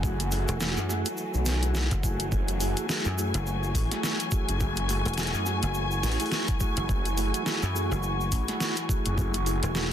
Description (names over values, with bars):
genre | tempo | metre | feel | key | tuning
glitch hop | 105 BPM | 4/4 | swing 58% on 16ths | F# minor | A4 = 441 Hz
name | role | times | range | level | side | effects
warm studio string section | sustained chords | 0.0-9.9 s | E3 to G#5 | -34 LUFS | left 3 dB | sidechain pumping
mellow tonewheel organ | stabs | 0.0-9.9 s | A3 to G#4 | -34 LUFS | right 2 dB | slow rotary speaker, sidechain pumping, dub echo
phased detuned saw bass | bass | 0.0-9.6 s | F#1 to B1 | -28 LUFS | equal | phaser, overdrive
electronic kick drum | drums | 0.0-9.3 s | none | -29 LUFS | equal | overdrive
tube shaker | percussion | 0.0-9.9 s | none | -39 LUFS | right 2 dB | none
warbly tape-like pad | texture | 0.0-9.9 s | E4 to C#6 | -35 LUFS | equal | chorus, built-in reverb, sidechain pumping
pop drum kit | drums | 0.2-9.9 s | hi-hat, snare drum | -31 LUFS | equal | overdrive
dry thumbed slap bass | bass | 0.5-9.9 s | E1 to F#2 | -29 LUFS | equal | none
room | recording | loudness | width
little or no reverb | dense, heavily limited modern master | -25 LUFS | side -10 dB against mid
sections
0.0-9.9 A section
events
none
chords
0.0 F#m9